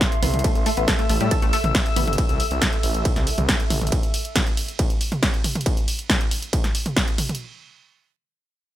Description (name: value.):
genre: driving peak-time techno.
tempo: 138 BPM.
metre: 4/4.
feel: straight.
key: A minor.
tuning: A4 = 441 Hz.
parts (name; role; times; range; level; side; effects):
electronic kick drum; drums; 0.0-7.1 s; none; -22 LUFS; equal; distortion.
punchy analog drum machine; drums; 0.0-7.4 s; hi-hat, ride cymbal, snare drum, toms; -24 LUFS; right 1 dB; overdrive.
warbly tape-like pad; texture; 0.0-3.9 s; A4 to E6; -28 LUFS; left 1 dB; chorus, built-in reverb, sidechain pumping.
tight sequenced synth; riff; 0.2-2.0 s; G3 to A4; -27 LUFS; left 2 dB; chorus, phaser, sidechain pumping, ping-pong delay.
detuned saw bass; bass; 0.2-3.9 s; G1 to A2; -25 LUFS; equal; sidechain pumping.
room: digital ambience.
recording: none.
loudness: -19 LUFS.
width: side -13 dB against mid.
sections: 0.0-7.4 A section.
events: drop 0.0-7.4.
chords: 0.0 Am.